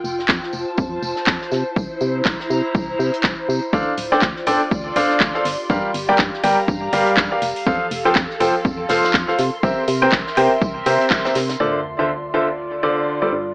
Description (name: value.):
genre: piano house.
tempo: 122 BPM.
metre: 4/4.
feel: swing 58% on 16ths.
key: D minor.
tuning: A4 = 440 Hz.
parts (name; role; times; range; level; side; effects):
organ-like FM bass; bass; 0.0-13.5 s; D1 to C3; -25 LUFS; equal; sidechain pumping.
natural country drum kit; drums; 0.0-11.6 s; hi-hat, snare drum, tambourine; -32 LUFS; equal; sidechain pumping on hats, high-pass filter on hats, high-pass filter on snare, sidechain pumping on perc, high-pass filter on perc, high-pass filter on room.
airy breathy pad; texture; 0.0-13.5 s; E4 to C6; -24 LUFS; equal; chorus, sidechain pumping.
electronic kick drum; drums; 0.3-11.2 s; none; -22 LUFS; equal; overdrive.
house drum kit; drums; 0.3-11.7 s; crash cymbal, handclaps, hi-hat; -22 LUFS; equal; low-pass filter on snare, low-pass filter on hats, low-pass filter on cymbals, low-pass filter on room.
clear grand piano; riff; 3.7-13.3 s; D3 to G5; -18 LUFS; equal; sidechain pumping, digital delay.
sub drop; sound effects; 11.6-13.5 s; none; -44 LUFS; equal; none.
room: moderate plate reverb, RT60 1.1 s, studio ambience.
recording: AM radio sound.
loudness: -16 LUFS.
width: side -29 dB against mid.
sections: 0.0-11.6 A section; 11.6-13.5 B section.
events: band accent 11.1; impact 11.6-13.5.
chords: 0.0 F; 1.5 C7; 3.7 Dm7; 5.5 Gm7; 7.4 F; 9.4 C7; 11.6 Dm7.